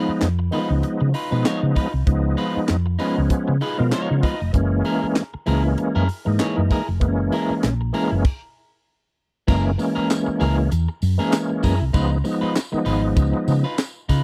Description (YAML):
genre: funk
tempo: 97 BPM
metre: 4/4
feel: swing 56% on 16ths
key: unclear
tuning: A4 = 440 Hz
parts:
  - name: electric guitar at the edge of break-up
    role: accompaniment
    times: 0.0-14.2 s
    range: Eb4 to Db5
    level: -32 LUFS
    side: equal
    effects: spring reverb
  - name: bright tonewheel organ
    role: stabs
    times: 0.0-13.7 s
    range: Eb3 to Eb5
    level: -24 LUFS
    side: equal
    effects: chorus vibrato, fast rotary speaker
  - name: hollow-body short-scale fingered electric bass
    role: bass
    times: 0.1-14.2 s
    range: F1 to Db3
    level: -23 LUFS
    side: equal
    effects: none
  - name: crisp fusion drum kit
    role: drums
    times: 0.2-14.2 s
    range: crash cymbal, handclaps, hi-hat, kick drum, snare drum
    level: -23 LUFS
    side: equal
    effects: none
  - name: tambourine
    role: percussion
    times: 9.5-14.2 s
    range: none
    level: -43 LUFS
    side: equal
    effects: none
room: little or no reverb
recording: dry, close 1970s-style studio recording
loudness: -21 LUFS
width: mono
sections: 0.0-9.5 A section; 9.5-14.2 B section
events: tonewheel organ fill 3.3-4.5; stop 8.2-9.5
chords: 0.0 Db9; 4.5 Gb9; 11.9 Db9